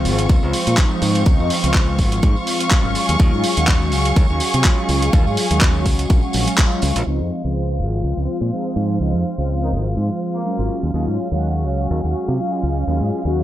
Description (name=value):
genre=filtered disco house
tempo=124 BPM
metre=4/4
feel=swing 56% on 16ths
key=Db major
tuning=A4 = 439 Hz
part: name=mellow synth brass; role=accompaniment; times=0.0-13.4 s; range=F3 to Gb4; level=-23 LUFS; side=equal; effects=chorus, phaser, sidechain pumping, low-pass filter
part: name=warm symphonic violin section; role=sustained chords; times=0.0-13.4 s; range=C4 to Db6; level=-26 LUFS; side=equal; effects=sidechain pumping, low-pass filter
part: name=modern bright fingered electric bass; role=bass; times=0.0-13.4 s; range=Ab1 to C3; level=-20 LUFS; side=equal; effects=tube saturation, sidechain pumping, low-pass filter
part: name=dusty soul sampler-style drum kit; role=drums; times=0.1-7.0 s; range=handclaps, hi-hat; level=-23 LUFS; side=right 1 dB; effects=overdrive, sidechain pumping on hats, studio reverb
part: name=tambourine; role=percussion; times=0.1-13.4 s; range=none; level=-32 LUFS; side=right 2 dB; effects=sidechain pumping on perc, low-pass filter on perc
part: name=electronic kick drum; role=drums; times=0.3-6.7 s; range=none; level=-15 LUFS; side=equal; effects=studio reverb
part: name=clear horn section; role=melody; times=9.6-10.8 s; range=Eb3 to Eb4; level=-31 LUFS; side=right 1 dB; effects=sidechain pumping, low-pass filter, tape echo
room=light reverb, studio ambience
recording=none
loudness=-16 LUFS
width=side -13 dB against mid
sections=0.0-7.1 A section; 7.1-13.4 B section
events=band accent 6.6; filter sweep 7.1-13.4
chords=0.0 Dbmaj7; 3.0 Ebm11; 7.1 Dbmaj7; 10.7 Ebm11